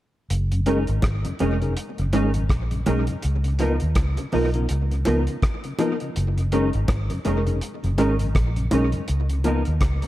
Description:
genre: lovers rock reggae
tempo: 82 BPM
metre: 4/4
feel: swing 58% on 16ths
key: F# major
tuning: A4 = 435 Hz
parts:
  - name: vintage muted fingered electric bass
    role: bass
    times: 0.3-10.0 s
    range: E#1 to D#2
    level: -22 LUFS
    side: equal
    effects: none
  - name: cloth-damped thuddy drum kit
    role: drums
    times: 0.3-10.1 s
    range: hi-hat, kick drum, rim click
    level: -26 LUFS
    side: equal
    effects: none
  - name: mellow tonewheel organ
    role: accompaniment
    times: 0.5-10.1 s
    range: F#2 to D#4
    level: -32 LUFS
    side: left 2 dB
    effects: none
  - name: mellow tine electric piano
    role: accompaniment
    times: 0.7-9.6 s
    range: B3 to A#4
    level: -28 LUFS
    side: left 3 dB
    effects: phaser
  - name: mellow electric guitar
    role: stabs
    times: 0.7-10.1 s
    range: E#3 to A#4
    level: -27 LUFS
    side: right 3 dB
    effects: ensemble chorus
  - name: bongos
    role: percussion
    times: 0.7-10.0 s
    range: none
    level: -34 LUFS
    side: right 1 dB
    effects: none
room: light reverb, small room ambience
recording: dark, warm production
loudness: -20 LUFS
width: side -15 dB against mid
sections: 0.3-10.1 A section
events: none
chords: 0.3 F#69; 3.2 C#13; 6.2 F#69; 9.1 C#13

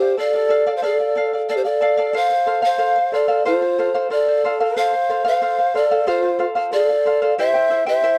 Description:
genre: andean folk, Andean ensemble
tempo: 92 BPM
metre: 4/4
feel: straight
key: unclear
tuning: A4 = 440 Hz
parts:
  - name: mellow hollow polished pan flute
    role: melody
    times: 0.0-8.2 s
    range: C5 to F5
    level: -21 LUFS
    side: equal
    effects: none
  - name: breathy mellow large quena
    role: second line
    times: 0.0-8.2 s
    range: F4 to C5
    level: -25 LUFS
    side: equal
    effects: tape echo
  - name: charango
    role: accompaniment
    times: 0.0-8.2 s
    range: E4 to G5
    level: -25 LUFS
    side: equal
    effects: none
room: studio ambience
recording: dry, close 1970s-style studio recording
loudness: -18 LUFS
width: mono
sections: 0.0-2.2 A section; 2.2-8.2 B section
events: none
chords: 0.0 Dm; 2.2 F; 7.4 C

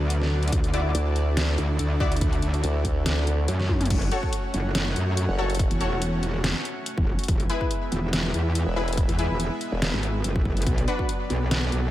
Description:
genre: heavy wobble dubstep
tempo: 142 BPM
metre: 4/4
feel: swing 54% on 16ths, half-time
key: F# minor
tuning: A4 = 440 Hz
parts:
  - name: supersaw pad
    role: sustained chords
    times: 0.0-11.9 s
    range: F#3 to F#5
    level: -33 LUFS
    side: right 1 dB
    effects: sidechain pumping
  - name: orchestra-hit-like synth stab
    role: stabs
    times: 0.0-11.9 s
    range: D4 to D5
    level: -31 LUFS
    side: left 2 dB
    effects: built-in reverb, digital delay
  - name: metallic wobble bass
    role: bass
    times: 0.0-11.9 s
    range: E1 to F#2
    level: -24 LUFS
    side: equal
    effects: chorus, overdrive
  - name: dubstep drum kit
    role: drums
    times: 0.1-11.8 s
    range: crash cymbal, hi-hat, snare drum, toms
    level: -29 LUFS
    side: equal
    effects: none
  - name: electronic kick drum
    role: drums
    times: 0.5-11.1 s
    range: none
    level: -25 LUFS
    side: equal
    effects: none
  - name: formant-sweep wobble bass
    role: bass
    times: 0.9-5.7, 8.7-9.9 s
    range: E1 to D2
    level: -24 LUFS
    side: equal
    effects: chorus, overdrive
room: digital ambience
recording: none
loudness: -22 LUFS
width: side -14 dB against mid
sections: 0.0-3.9 A section; 3.9-11.9 A section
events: drop 0.0-3.9, 3.9-11.9; drum fill 3.7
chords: 0.0 Bm; 0.5 Dadd9; 3.9 F#m; 7.3 E; 10.7 Bm

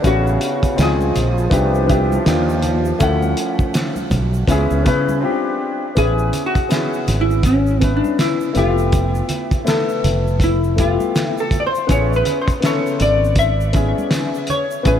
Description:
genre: hip hop, jazz-hop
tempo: 81 BPM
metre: 4/4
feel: swing 59% on 16ths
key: A major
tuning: A4 = 444 Hz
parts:
  - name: hollow-body jazz guitar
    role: melody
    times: 0.0-14.9 s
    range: C#4 to E5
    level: -21 LUFS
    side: left 2 dB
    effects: analog chorus, tape echo
  - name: warm grand piano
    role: accompaniment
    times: 0.0-15.0 s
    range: C#3 to G5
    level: -21 LUFS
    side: left 2 dB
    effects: wide subtle chorus
  - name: fretless electric bass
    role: bass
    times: 0.0-15.0 s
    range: F1 to C#3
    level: -18 LUFS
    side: equal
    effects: ensemble chorus
  - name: cloth-damped thuddy drum kit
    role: drums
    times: 0.0-15.0 s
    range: hi-hat, kick drum, snare drum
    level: -21 LUFS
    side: equal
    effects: none
  - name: tube shaker and congas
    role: percussion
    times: 0.0-15.0 s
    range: none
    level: -30 LUFS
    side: right 3 dB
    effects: none
  - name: clear trombone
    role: second line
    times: 0.1-5.2 s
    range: C#3 to E#3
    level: -24 LUFS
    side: right 3 dB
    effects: tape echo
room: moderate huge ambient reverb, RT60 5.0 s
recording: dreamy mix soaked in reverb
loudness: -15 LUFS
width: side -9 dB against mid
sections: 0.0-6.0 A section; 6.0-15.0 B section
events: break 5.2-6.0; hollow-body jazz guitar solo 6.0-15.0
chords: 0.0 A69; 0.8 C#maj9; 1.5 Cmaj9; 2.3 D#maj9; 3.0 Dmaj9; 4.5 C#m7; 5.2 Csus24; 6.0 Amaj7; 8.6 Fmaj9#11; 11.9 Amaj7

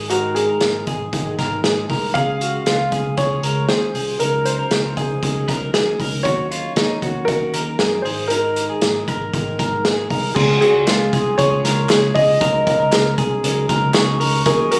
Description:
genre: jangly indie pop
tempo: 117 BPM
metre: 4/4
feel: straight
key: Db major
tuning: A4 = 440 Hz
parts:
  - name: warm upright piano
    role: melody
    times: 0.0-14.8 s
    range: Gb4 to F5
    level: -23 LUFS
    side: equal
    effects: slapback echo
  - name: fingerpicked plugged-in steel-string acoustic guitar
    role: accompaniment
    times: 0.0-14.8 s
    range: Ab2 to Bb4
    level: -30 LUFS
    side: equal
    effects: none
  - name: electric guitar through a small old amp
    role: arpeggios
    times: 0.0-14.8 s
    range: Eb4 to Bb4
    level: -26 LUFS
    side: equal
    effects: slapback echo
  - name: vintage muted picked electric bass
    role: bass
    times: 0.0-14.7 s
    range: Ab1 to Gb2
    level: -28 LUFS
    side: equal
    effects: none
  - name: vintage drum kit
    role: drums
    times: 0.1-14.8 s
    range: crash cymbal, hi-hat, kick drum, snare drum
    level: -23 LUFS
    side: equal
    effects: none
  - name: glockenspiel with soft plastic mallets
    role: second line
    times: 10.4-14.8 s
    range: Bb5 to Db6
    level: -30 LUFS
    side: equal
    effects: slapback echo
  - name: group handclap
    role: percussion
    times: 10.9-14.1 s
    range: none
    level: -31 LUFS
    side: equal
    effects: none
room: light reverb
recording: recorded on a phone in the room, studio reverb, compression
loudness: -18 LUFS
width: mono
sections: 0.0-10.4 A section; 10.4-14.8 B section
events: none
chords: 0.0 Absus2; 2.2 Db; 4.2 Gb6/Db; 6.3 Ebm7; 8.1 Absus2; 10.4 Db; 12.4 Gb6

